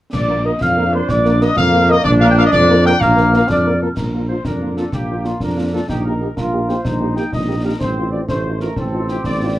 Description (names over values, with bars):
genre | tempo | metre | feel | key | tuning
military-style march for wind band | 125 BPM (dotted quarters) | 6/8 | straight | Bb major | A4 = 439 Hz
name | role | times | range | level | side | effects
dark trumpet section | melody | 0.1-9.6 s | F4 to G5 | -20 LUFS | left 1 dB | none
mellow hollow wooden piccolo | second line | 0.1-3.9 s | C6 to G6 | -20 LUFS | equal | none
mellow tuba | bass | 0.1-9.6 s | A1 to F2 | -18 LUFS | right 1 dB | none
concert snare drum, clash cymbals and concert bass drum | drums | 0.1-9.6 s | none | -25 LUFS | equal | none
warm French horn section | accompaniment | 0.3-9.6 s | F3 to Bb4 | -22 LUFS | equal | none
bright trombone section | sustained chords | 0.6-9.6 s | A3 to F4 | -22 LUFS | equal | none
room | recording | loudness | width
moderate booth ambience, RT60 0.2 s | worn, warbling old tape, cassette tape, warbly pitch drift | -14 LUFS | side -14 dB against mid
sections
0.1-4.0 A section; 4.0-9.6 B section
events
none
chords
0.1 Bb; 5.9 Eb/Bb; 7.8 F7/A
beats
| 0.14 0.61 | 1.09 1.57 | 2.05 2.53 | 3.01 3.49 | 3.97 4.45 | 4.93 5.41 | 5.89 6.37 | 6.85 7.33 | 7.81 8.29 | 8.77 9.25